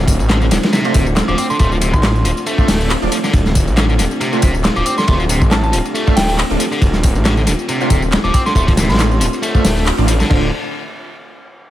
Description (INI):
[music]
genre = breakbeat, breaks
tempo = 138 BPM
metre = 4/4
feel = swing 55% on 16ths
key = D minor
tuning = A4 = 441 Hz
[part]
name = dark analog pad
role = sustained chords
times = 0.0-10.5 s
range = A3 to C5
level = -24 LUFS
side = equal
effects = chorus, sidechain pumping
[part]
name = detuned saw bass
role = bass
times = 0.0-10.5 s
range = D1 to A1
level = -16 LUFS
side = equal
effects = none
[part]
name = crunchy breakbeat drum kit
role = drums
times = 0.1-10.4 s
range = crash cymbal, hi-hat, kick drum, ride cymbal, snare drum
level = -16 LUFS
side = equal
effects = none
[part]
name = garage drum kit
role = drums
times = 0.1-10.3 s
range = handclaps, hi-hat, tambourine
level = -24 LUFS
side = left 1 dB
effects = none
[part]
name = biting overdriven guitar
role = riff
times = 0.3-10.5 s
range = C3 to C4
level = -22 LUFS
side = equal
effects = tube saturation, ping-pong delay
[part]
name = orchestra-hit-like synth stab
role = stabs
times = 0.8-10.5 s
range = A3 to D5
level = -23 LUFS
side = right 2 dB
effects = built-in reverb, vintage 12-bit sampler grit, ping-pong delay
[part]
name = soft synth bell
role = melody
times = 1.3-9.2 s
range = G5 to D6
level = -22 LUFS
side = right 1 dB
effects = chorus, AM radio sound, ping-pong delay
[sound]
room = studio reverb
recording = none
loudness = -12 LUFS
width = side -13 dB against mid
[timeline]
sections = 0.0-10.3 A section; 10.3-11.7 B section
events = drop 0.0-10.3; band accent 9.9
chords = 0.0 Dm7